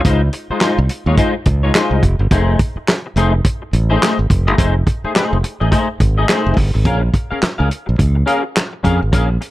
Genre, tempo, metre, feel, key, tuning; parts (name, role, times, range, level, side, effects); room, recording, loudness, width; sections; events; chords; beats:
funk; 106 BPM; 4/4; swing 60% on 16ths; Bb dorian; A4 = 443 Hz
modern bright fingered electric bass; bass; 0.0-9.4 s; F1 to F2; -15 LUFS; equal
warm soul drum kit; drums; 0.0-9.5 s; handclaps, hi-hat, kick drum, snare drum; -16 LUFS; equal
semi-hollow electric guitar; accompaniment; 0.1-9.4 s; Ab3 to F5; -19 LUFS; left 2 dB; ensemble chorus, plate reverb
light reverb; dark, warm production; -13 LUFS; side -16 dB against mid
0.0-6.9 A section; 6.9-9.5 B section
0.0 Dbmaj9; 2.3 F7#9; 6.9 Bbm7
| 0.05 0.61 1.18 1.75 | 2.31 2.88 3.45 4.02 | 4.58 5.15 5.72 6.29 | 6.85 7.42 7.99 8.56 | 9.13